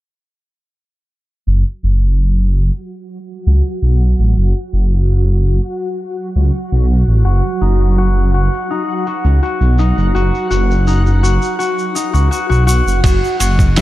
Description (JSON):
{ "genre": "trip hop", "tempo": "83 BPM", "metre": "4/4", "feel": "straight", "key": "unclear", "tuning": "A4 = 440 Hz", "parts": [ { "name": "dark detuned saw bass", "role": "bass", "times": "1.5-13.8 s", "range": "F#1 to C#2", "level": "-12 LUFS", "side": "equal", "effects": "tube saturation" }, { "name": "backwards swelling texture", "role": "texture", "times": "2.6-13.8 s", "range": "F#3 to D#5", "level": "-24 LUFS", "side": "right 2 dB", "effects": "built-in reverb" }, { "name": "concert harp", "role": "arpeggios", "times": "7.2-13.8 s", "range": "D#4 to F#4", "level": "-18 LUFS", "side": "left 3 dB", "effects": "tape echo" }, { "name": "tube shaker", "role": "percussion", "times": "7.3-13.8 s", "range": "none", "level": "-26 LUFS", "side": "right 2 dB", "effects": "none" }, { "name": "dusty soul sampler-style drum kit", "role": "drums", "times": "13.0-13.8 s", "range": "kick drum, ride cymbal, snare drum", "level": "-14 LUFS", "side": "equal", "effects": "none" } ], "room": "digital ambience", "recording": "low-pass filter", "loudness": "-12 LUFS", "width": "side -16 dB against mid", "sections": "1.5-13.0 A section", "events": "filter sweep 1.5-13.0", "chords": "1.5 N.C.; 7.3 F#sus4; 13.0 N.C." }